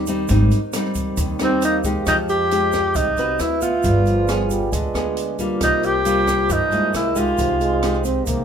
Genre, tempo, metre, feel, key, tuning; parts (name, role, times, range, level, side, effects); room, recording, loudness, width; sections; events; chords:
bossa nova; 135 BPM; 4/4; straight; A4 = 440 Hz
nylon-string guitar; accompaniment; 0.0-8.4 s; G2 to Cb5; -23 LUFS; left 1 dB
vibraphone with medium hard mallets; accompaniment; 0.0-8.4 s; Eb4 to F5; -27 LUFS; right 2 dB
upright bass; bass; 0.0-8.4 s; G1 to G2; -24 LUFS; equal
open jazz drum kit; drums; 0.1-8.4 s; hi-hat, kick drum, rim click; -28 LUFS; equal
egg shaker; percussion; 0.1-8.4 s; -35 LUFS; right 4 dB
breathy tenor saxophone; melody; 1.4-8.1 s; C4 to G4; -19 LUFS; equal
breathy trombone; second line; 4.1-8.4 s; F3 to C4; -26 LUFS; right 4 dB
light reverb; minimal, uncompressed stereo recording; -17 LUFS; side -8 dB against mid
0.0-2.1 A section; 2.1-8.4 B section
tenor saxophone solo 0.0-2.1
0.0 Abmaj7; 2.1 Fm9; 3.4 D13; 3.8 G7b9; 5.6 C7sus4; 6.9 C7alt; 7.4 Fm9/C